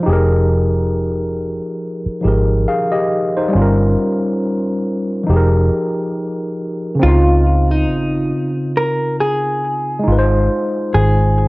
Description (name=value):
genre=hip hop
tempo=69 BPM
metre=4/4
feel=swing 56% on 16ths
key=F minor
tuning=A4 = 441 Hz
part: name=tine electric piano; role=accompaniment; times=0.0-11.5 s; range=Db3 to F5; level=-17 LUFS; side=equal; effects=overdrive, medium stereo tremolo, cassette tape, low-pass filter
part: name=vintage muted fingered electric bass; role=bass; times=0.1-11.5 s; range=F1 to Db2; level=-15 LUFS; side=equal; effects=none
part: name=hollow-body jazz guitar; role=melody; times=7.0-11.5 s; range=Eb4 to Bb4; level=-18 LUFS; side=equal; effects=low-pass filter, cassette tape
room=light reverb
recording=home recording on cassette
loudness=-14 LUFS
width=side -22 dB against mid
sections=0.0-7.0 A section; 7.0-11.5 B section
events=none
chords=0.1 Fm11; 3.5 Gm7b5; 5.3 Fm11; 7.0 Dbmaj9; 10.1 Ab6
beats=| 0.06 0.93 1.80 2.67 | 3.54 4.41 5.28 6.15 | 7.02 7.89 8.76 9.63 | 10.50 11.37